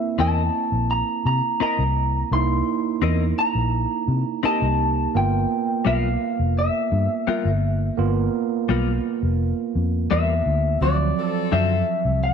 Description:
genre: blues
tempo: 85 BPM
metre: 4/4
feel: straight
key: unclear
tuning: A4 = 439 Hz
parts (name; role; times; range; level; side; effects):
- electric guitar at the edge of break-up; melody; 0.0-12.3 s; D5 to C6; -24 LUFS; left 1 dB; none
- overdriven tine electric piano; accompaniment; 0.0-12.3 s; E#3 to G4; -26 LUFS; right 11 dB; none
- direct-recorded clean electric guitar; stabs; 0.2-11.7 s; D3 to D#5; -27 LUFS; left 11 dB; wide subtle chorus
- vintage muted fingered electric bass; bass; 0.2-12.3 s; F1 to C3; -22 LUFS; left 1 dB; none
- warm horn section; sustained chords; 10.8-11.9 s; C4 to A4; -31 LUFS; left 12 dB; none
room: moderate echo chamber reverb, RT60 2.1 s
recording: 1960s-style stereo with parts hard left and right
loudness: -19 LUFS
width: side -7 dB against mid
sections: 0.0-12.3 A section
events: none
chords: 0.0 C7#9; 5.2 G7#9; 10.8 D7#9

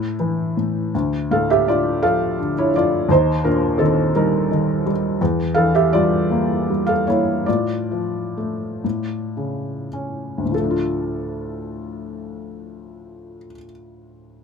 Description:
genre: classical, lyrical solo piano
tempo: 32-57 BPM (dotted quarters)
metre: 6/8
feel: rubato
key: D harmonic minor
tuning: A4 = 440 Hz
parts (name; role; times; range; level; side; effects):
- felt-muted upright piano; solo; 0.0-14.4 s; D2 to F5; -18 LUFS; equal; none
room: light reverb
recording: close, detailed microphones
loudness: -18 LUFS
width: side -6 dB against mid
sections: 0.9-10.5 A section; 10.5-14.4 B section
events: slowing down 5.2-10.5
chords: 0.0 A5; 0.9 Dm; 3.1 Eb; 5.2 Edim; 7.5 Dm/A; 8.8 A; 10.5 Dm

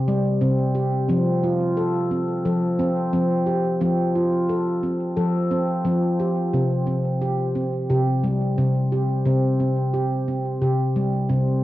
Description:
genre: world meditative, meditative tuned percussion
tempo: 88 BPM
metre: 4/4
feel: straight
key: unclear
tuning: A4 = 440 Hz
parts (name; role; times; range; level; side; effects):
- handpan; solo; 0.0-11.6 s; C3 to A4; -19 LUFS; equal; cassette tape, tape echo
room: moderate spring reverb, RT60 1.3 s, small room ambience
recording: home recording on cassette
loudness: -20 LUFS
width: side -15 dB against mid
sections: 0.0-11.6 A section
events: none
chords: 0.0 C5; 1.1 F; 6.5 C5

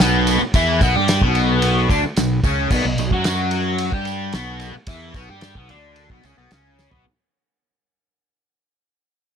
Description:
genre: psychedelic rock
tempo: 111 BPM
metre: 4/4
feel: straight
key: B minor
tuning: A4 = 439 Hz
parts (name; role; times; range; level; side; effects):
- overdriven electric guitar; riff; 0.0-7.0 s; B2 to G4; -20 LUFS; left 1 dB; phaser
- fuzz fingered electric bass; bass; 0.0-7.0 s; B1 to G2; -22 LUFS; right 1 dB; overdrive
- cloth-damped thuddy drum kit; drums; 0.0-7.0 s; crash cymbal, kick drum, ride cymbal, snare drum, toms; -21 LUFS; equal; none
- tambourine; percussion; 0.0-6.9 s; none; -33 LUFS; right 16 dB; none
room: small room ambience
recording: none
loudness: -16 LUFS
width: side -8 dB against mid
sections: 0.0-7.1 A section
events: fade-out 0.0-7.1; drum fill 6.8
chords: 0.0 Bm

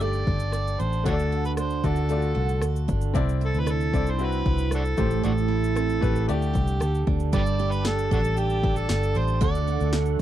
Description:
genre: acoustic pop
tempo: 115 BPM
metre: 4/4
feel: straight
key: unclear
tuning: A4 = 439 Hz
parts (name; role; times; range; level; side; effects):
- overdriven harmonica; melody; 0.0-9.9 s; D4 to D5; -29 LUFS; equal; none
- bright upright piano; accompaniment; 0.0-7.4 s; A3 to D5; -33 LUFS; left 8 dB; none
- picked steel-string acoustic guitar; accompaniment; 0.0-10.2 s; A2 to C5; -29 LUFS; right 13 dB; none
- vintage muted fingered electric bass; bass; 0.0-10.2 s; G1 to D2; -25 LUFS; left 1 dB; none
- punchy analog drum machine; drums; 0.0-10.2 s; kick drum, rim click, shaker, snare drum; -28 LUFS; left 1 dB; none
- overdriven tonewheel organ; sustained chords; 7.3-10.2 s; D3 to A4; -36 LUFS; left 2 dB; chorus vibrato, slow rotary speaker
room: little or no reverb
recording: dry, close 1970s-style studio recording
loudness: -22 LUFS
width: side -12 dB against mid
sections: 0.0-7.3 A section; 7.3-10.2 B section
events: none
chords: 0.0 Gsus2; 1.1 D; 3.2 Cadd9; 5.0 Am7; 6.3 Dsus4; 7.3 Gsus2; 9.4 D

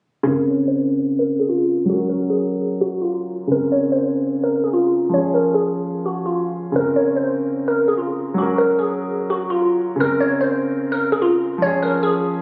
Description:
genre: hip hop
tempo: 148 BPM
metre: 4/4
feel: half-time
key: Bb minor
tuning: A4 = 440 Hz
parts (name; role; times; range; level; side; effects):
- warm concert grand piano; accompaniment; 0.2-12.4 s; Db3 to Bb4; -23 LUFS; equal; low-pass filter
- glassy wavetable pluck; melody; 0.3-12.4 s; F4 to Db5; -22 LUFS; equal; chorus, low-pass filter, tape echo
room: light reverb, small room reverb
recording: recorded on a phone in the room, studio reverb, compression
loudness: -20 LUFS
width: mono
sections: 0.3-12.4 A section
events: filter sweep 0.3-12.4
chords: 0.3 Bbmadd9; 1.9 Gb; 3.5 Bbmadd9; 5.1 Db; 6.8 Bbmadd9; 8.4 Gb; 10.0 Bbmadd9; 11.6 Db

